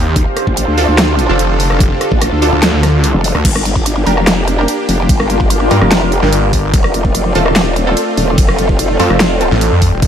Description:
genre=heavy wobble dubstep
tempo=146 BPM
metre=4/4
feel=half-time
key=G minor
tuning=A4 = 443 Hz
part: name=supersaw pad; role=sustained chords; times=0.0-10.1 s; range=D3 to Bb4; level=-20 LUFS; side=right 1 dB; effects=vintage 12-bit sampler grit, sidechain pumping
part: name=snarling distorted saw bass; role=bass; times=0.0-10.0 s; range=Eb1 to G2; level=-13 LUFS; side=equal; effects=distortion, overdrive
part: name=deep dark ambient pad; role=texture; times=0.0-10.1 s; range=F4 to G5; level=-20 LUFS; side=equal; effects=chorus, built-in reverb, sidechain pumping
part: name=growl bass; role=bass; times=0.2-10.1 s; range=Eb1 to D2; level=-14 LUFS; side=equal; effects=chorus, overdrive
part: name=dubstep drum kit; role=drums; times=0.2-10.1 s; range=crash cymbal, handclaps, hi-hat, ride cymbal, rim click, snare drum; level=-17 LUFS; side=equal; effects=overdrive
part: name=electronic kick drum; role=drums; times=0.2-10.1 s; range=none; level=-14 LUFS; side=equal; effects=overdrive
part: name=orchestra-hit-like synth stab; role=stabs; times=0.8-9.5 s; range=C4 to Bb4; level=-20 LUFS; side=right 2 dB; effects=built-in reverb, ping-pong delay
room=light reverb, digital ambience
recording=none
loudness=-10 LUFS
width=side -8 dB against mid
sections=0.0-3.4 A section; 3.4-10.1 A section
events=drop 0.0-3.4, 3.4-10.1; break 3.0-3.4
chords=0.2 Dm; 3.4 Gm; 6.7 F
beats=| 0.16 0.57 0.98 1.39 | 1.80 2.21 2.63 3.04 | 3.45 3.86 4.27 4.68 | 5.09 5.50 5.91 6.33 | 6.74 7.15 7.56 7.97 | 8.38 8.79 9.20 9.61 | 10.02

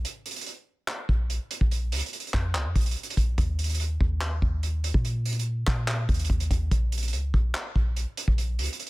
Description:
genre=hip hop, trap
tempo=144 BPM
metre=4/4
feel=half-time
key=Bb minor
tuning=A4 = 440 Hz
part: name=clean 808-style bass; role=bass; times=0.0-8.7 s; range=Bb1 to Bb2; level=-27 LUFS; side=equal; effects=none
part: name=vintage drum kit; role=drums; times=0.0-8.9 s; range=handclaps, hi-hat, kick drum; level=-27 LUFS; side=equal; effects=none
room=little or no reverb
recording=dense, heavily limited modern master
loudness=-24 LUFS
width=side -21 dB against mid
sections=0.0-8.9 A section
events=break 0.0-0.9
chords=none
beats=| 0.05 0.46 0.88 1.30 | 1.71 2.13 2.55 2.96 | 3.38 3.80 4.21 4.63 | 5.05 5.46 5.88 6.30 | 6.71 7.13 7.55 7.96 | 8.38 8.80

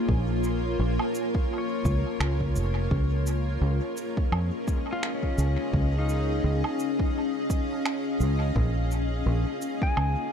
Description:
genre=ambient dub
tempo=85 BPM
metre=4/4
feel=swing 57% on 16ths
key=unclear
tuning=A4 = 440 Hz
part: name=granular cloud pad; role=sustained chords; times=0.0-10.3 s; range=Bb3 to F5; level=-29 LUFS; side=left 1 dB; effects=built-in reverb
part: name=pedal steel guitar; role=arpeggios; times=0.0-10.3 s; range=Db4 to C6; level=-36 LUFS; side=left 3 dB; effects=vintage 12-bit sampler grit, dub echo
part: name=fingered electric bass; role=bass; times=0.1-10.1 s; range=F1 to F2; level=-25 LUFS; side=equal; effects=none
part: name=electronic kick drum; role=drums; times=0.1-9.9 s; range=none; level=-28 LUFS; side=equal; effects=overdrive
part: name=electronic cabasa, woodblock and finger snaps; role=drums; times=0.4-10.1 s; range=none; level=-35 LUFS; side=right 2 dB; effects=overdrive, dub echo
room=light reverb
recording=dark, warm production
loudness=-24 LUFS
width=side -7 dB against mid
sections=0.0-10.3 A section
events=none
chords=0.0 Bbm; 2.9 Db; 8.6 Bbm7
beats=| 0.09 0.79 1.50 2.20 | 2.91 3.62 4.32 5.03 | 5.73 6.44 7.14 7.85 | 8.56 9.26 9.97

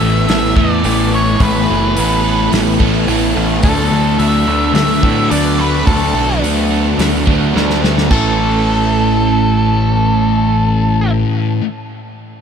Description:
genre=rock, shoegaze and dream pop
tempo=107 BPM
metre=4/4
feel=straight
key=A major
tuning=A4 = 439 Hz
part: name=octave-fuzz lead guitar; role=melody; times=0.0-11.1 s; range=A4 to E5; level=-19 LUFS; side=equal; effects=distortion, digital delay
part: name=string machine, cellos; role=sustained chords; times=0.0-11.1 s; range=A3 to F#6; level=-25 LUFS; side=right 2 dB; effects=ensemble chorus
part: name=crunchy overdriven guitar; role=riff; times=0.0-11.6 s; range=D3 to A4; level=-20 LUFS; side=right 12 dB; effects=reverse reverb
part: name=crunchy overdriven guitar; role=riff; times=0.0-11.6 s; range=A2 to D4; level=-20 LUFS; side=right 1 dB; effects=phaser
part: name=thick fuzz guitar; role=riff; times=0.0-11.6 s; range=A2 to D4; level=-19 LUFS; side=left 7 dB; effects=distortion, lush chorus
part: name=growling picked electric bass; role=bass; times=0.0-11.2 s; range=F#1 to A2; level=-18 LUFS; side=equal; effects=overdrive
part: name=loose indie drum kit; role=drums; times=0.3-8.2 s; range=crash cymbal, hi-hat, kick drum, snare drum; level=-19 LUFS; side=equal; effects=none
room=light reverb, small room reverb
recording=none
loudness=-11 LUFS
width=side -7 dB against mid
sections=0.0-8.1 A section; 8.1-10.3 B section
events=drum fill 7.6-8.1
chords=0.0 Asus2; 3.6 D6; 8.1 A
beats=0.28 0.84 | 1.40 1.96 2.52 3.08 | 3.64 4.20 4.76 5.32 | 5.88 6.44 7.00 7.55 | 8.11 8.67 9.23 9.79

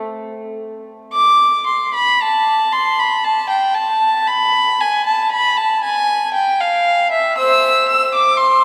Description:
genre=classical, baroque-style suite movement for unaccompanied violin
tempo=58 BPM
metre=3/4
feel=rubato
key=A minor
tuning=A4 = 440 Hz
part: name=warm violin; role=solo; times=0.0-8.6 s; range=C5 to E6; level=-16 LUFS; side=equal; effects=none
room=wet cathedral reverb, RT60 5.3 s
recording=in a vast, echoing space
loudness=-15 LUFS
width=mono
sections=0.0-1.1 A section; 1.1-8.6 B section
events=none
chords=none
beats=0.03 | 1.15 2.20 3.23 | 4.26 5.30 6.33 | 7.36 8.38

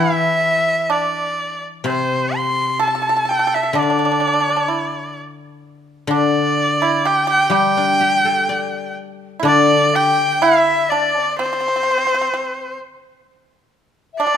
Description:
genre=chinese traditional, Chinese chamber ensemble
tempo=63 BPM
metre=2/4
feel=rubato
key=unclear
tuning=A4 = 439 Hz
part: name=clear erhu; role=melody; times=0.0-14.4 s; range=C5 to C6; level=-18 LUFS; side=equal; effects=none
part: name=pipa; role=second line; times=0.0-14.4 s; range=C4 to A4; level=-20 LUFS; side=right 4 dB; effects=none
part: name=guzheng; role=accompaniment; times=0.0-12.3 s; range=C3 to D5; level=-22 LUFS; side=left 5 dB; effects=none
part: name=large dizi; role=second line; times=9.5-14.4 s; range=C5 to G5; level=-21 LUFS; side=left 5 dB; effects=none
room=moderate recital hall reverb, RT60 1.7 s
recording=minimal, uncompressed stereo recording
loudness=-15 LUFS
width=side -8 dB against mid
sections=0.0-9.5 A section; 9.5-14.4 B section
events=none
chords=none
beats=0.90 | 1.86 2.81 | 3.75 4.69 | 5.63 6.58 | 7.53 8.49 | 9.46 10.43 | 11.38 12.33 | 13.26 14.19

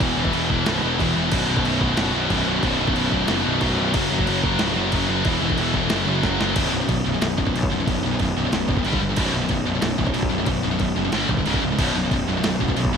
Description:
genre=heavy metal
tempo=183 BPM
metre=4/4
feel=straight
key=unclear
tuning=A4 = 439 Hz
part: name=fuzz guitar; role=riff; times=0.0-13.0 s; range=B1 to G3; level=-26 LUFS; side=equal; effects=distortion
part: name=scooped high-gain guitar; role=riff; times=0.0-13.0 s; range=B1 to G3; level=-25 LUFS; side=left 10 dB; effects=distortion
part: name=scooped high-gain guitar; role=riff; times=0.0-13.0 s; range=B1 to G3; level=-25 LUFS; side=right 11 dB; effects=distortion
part: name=fuzz picked electric bass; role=bass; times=0.0-13.0 s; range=B0 to B1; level=-27 LUFS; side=equal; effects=overdrive
part: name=dusty soul sampler-style drum kit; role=drums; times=0.0-12.9 s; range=crash cymbal, kick drum, snare drum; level=-26 LUFS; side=equal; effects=overdrive, gated reverb
room=light reverb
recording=bright 1980s-style digital production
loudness=-19 LUFS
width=side -6 dB against mid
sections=0.0-6.6 A section; 6.6-13.0 B section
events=drum fill 6.2-6.6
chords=0.0 E5; 1.3 B5; 3.9 F#5; 5.3 E5; 5.9 F#5; 6.6 B5; 8.9 G5; 9.2 B5; 11.1 G5; 11.5 C#5; 11.8 B5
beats=| 0.01 0.33 0.66 0.99 | 1.32 1.65 1.98 2.30 | 2.63 2.96 3.29 3.62 | 3.94 4.27 4.60 4.92 | 5.25 5.58 5.91 6.24 | 6.56 6.89 7.22 7.54 | 7.87 8.20 8.52 8.85 | 9.18 9.51 9.83 10.16 | 10.48 10.81 11.14 11.47 | 11.79 12.12 12.45 12.77

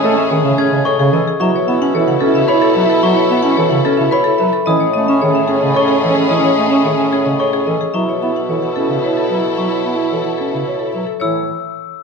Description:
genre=classical, minimalist pattern music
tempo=110 BPM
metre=3/4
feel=straight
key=A lydian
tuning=A4 = 440 Hz
part: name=marimba with hard mallets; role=melody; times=0.0-11.5 s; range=G#4 to F#5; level=-19 LUFS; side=left 8 dB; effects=none
part: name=clear French horn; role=second line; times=0.0-11.0 s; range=C#4 to E4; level=-20 LUFS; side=right 5 dB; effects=none
part: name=warm bass clarinet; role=accompaniment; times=0.0-11.5 s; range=C#3 to C#4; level=-20 LUFS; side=right 1 dB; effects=none
part: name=rich studio string section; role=sustained chords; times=0.0-11.0 s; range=C#4 to A4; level=-23 LUFS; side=left 3 dB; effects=none
part: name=warm grand piano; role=arpeggios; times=0.0-11.5 s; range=C#4 to C#5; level=-21 LUFS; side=right 6 dB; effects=none
part: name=mellow bassoon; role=bass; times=0.0-11.5 s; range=A2 to B2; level=-22 LUFS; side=right 2 dB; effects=none
part: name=glockenspiel with soft plastic mallets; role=arpeggios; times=0.6-11.5 s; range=B5 to G#6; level=-23 LUFS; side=left 2 dB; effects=none
room=wet recital hall reverb, RT60 1.6 s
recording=none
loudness=-12 LUFS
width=side -5 dB against mid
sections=0.0-11.2 A section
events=none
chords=0.0 Amaj7; 1.4 B7sus4; 4.7 Amaj7; 7.9 B7sus4; 11.2 A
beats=0.30 0.85 | 1.40 1.94 2.49 | 3.03 3.58 4.12 | 4.67 5.21 5.76 | 6.30 6.85 7.40 | 7.94 8.49 9.03 | 9.58 10.12 10.67 | 11.21

